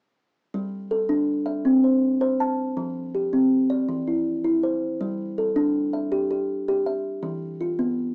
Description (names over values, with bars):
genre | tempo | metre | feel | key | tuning
southern african traditional | 108 BPM (dotted quarters) | 12/8 | straight | G mixolydian | A4 = 440 Hz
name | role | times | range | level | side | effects
kalimba | arpeggios | 0.5-8.1 s | E3 to A5 | -24 LUFS | equal | cassette tape
room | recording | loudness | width
moderate booth ambience, RT60 0.2 s | home recording on cassette, small speaker sound | -24 LUFS | mono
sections
0.5-8.1 A section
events
none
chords
0.5 G5; 1.7 C; 2.8 F; 3.9 Cadd9/E; 5.0 G5; 7.2 E5